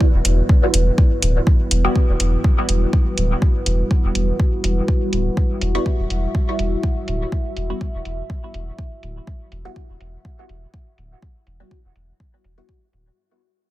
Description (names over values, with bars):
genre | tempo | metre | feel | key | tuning
dub techno | 123 BPM | 4/4 | swing 55% on 16ths | E minor | A4 = 440 Hz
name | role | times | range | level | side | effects
dark analog pad | sustained chords | 0.0-13.2 s | G3 to E5 | -26 LUFS | equal | chorus, phaser, sidechain pumping
filtered dub chord stab | stabs | 0.0-2.1, 5.7-12.9 s | G3 to F#4 | -26 LUFS | equal | phaser, sidechain pumping, dub echo
electronic kick drum | drums | 0.0-12.8 s | none | -17 LUFS | equal | none
soft dub sub bass | bass | 0.1-13.1 s | D1 to E1 | -20 LUFS | equal | sidechain pumping
electronic hi-hat | drums | 0.2-13.0 s | none | -22 LUFS | equal | low-pass filter on hats
room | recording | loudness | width
little or no reverb | none | -16 LUFS | side -16 dB against mid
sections
0.0-13.2 A section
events
fade-out 0.0-13.2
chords
0.0 Emadd9